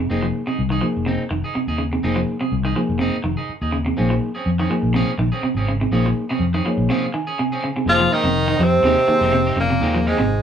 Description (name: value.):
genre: afrobeat.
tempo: 123 BPM.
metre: 4/4.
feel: swing 54% on 16ths.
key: F minor.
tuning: A4 = 440 Hz.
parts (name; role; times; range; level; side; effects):
reed electric piano; accompaniment; 0.0-10.2 s; Bb3 to Ab5; -25 LUFS; equal; none.
electric guitar at the edge of break-up; arpeggios; 0.0-10.3 s; C3 to F3; -24 LUFS; left 1 dB; spring reverb.
fingered electric bass; bass; 0.0-10.4 s; F1 to F2; -22 LUFS; left 1 dB; none.
electric guitar at the edge of break-up; stabs; 0.1-10.2 s; F3 to Ab4; -27 LUFS; right 6 dB; none.
clear tenor saxophone; melody; 7.9-10.4 s; Ab3 to F4; -18 LUFS; right 1 dB; none.
clear trombone; second line; 7.9-10.4 s; Ab2 to F3; -24 LUFS; right 3 dB; none.
room: moderate studio ambience, RT60 0.5 s.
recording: band playing live in one room.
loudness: -17 LUFS.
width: side -8 dB against mid.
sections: 0.0-7.9 A section; 7.9-10.4 B section.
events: reed electric piano fill 6.4-7.9; break 6.9-7.9.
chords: 0.1 Fm7; 4.0 Bbm9; 7.9 Fm9.